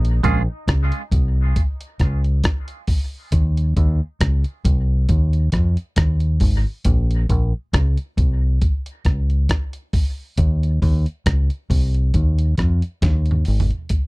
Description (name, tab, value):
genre	dub reggae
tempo	68 BPM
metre	4/4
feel	swing 56% on 16ths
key	Bb minor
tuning	A4 = 438 Hz
part	deep dub fingered electric bass	bass	0.0-13.7 s	Ab1 to F2	-17 LUFS	equal	none
part	dusty soul sampler-style drum kit	drums	0.0-14.1 s	hi-hat, kick drum, rim click, snare drum, toms	-20 LUFS	equal	none
room	little or no reverb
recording	dry, close 1970s-style studio recording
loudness	-17 LUFS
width	side -24 dB against mid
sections	0.0-13.9 A section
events	drum fill 13.0-13.9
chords	none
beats	0.68 1.56 2.44 | 3.32 4.20 5.08 5.97 | 6.85 7.73 8.61 9.49 | 10.38 11.26 12.14 13.02 | 13.90